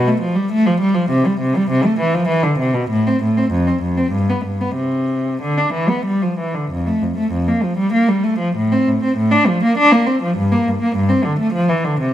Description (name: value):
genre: classical, baroque-style suite movement for unaccompanied cello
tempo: 90-104 BPM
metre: 3/4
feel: rubato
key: C major, F major from 6.7 s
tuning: A4 = 440 Hz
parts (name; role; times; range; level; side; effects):
- warm cello; solo; 0.0-12.1 s; F2 to D4; -14 LUFS; equal; none
room: moderate stone room reverb, RT60 1.4 s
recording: none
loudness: -15 LUFS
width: side -12 dB against mid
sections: 0.0-6.7 A section; 6.7-12.1 A section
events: none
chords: none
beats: 0.51 | 1.11 1.69 2.28 | 2.89 3.50 4.11 | 4.75 5.42 6.07 | 6.71 7.32 7.93 | 8.55 9.17 9.77 | 10.37 10.97 11.56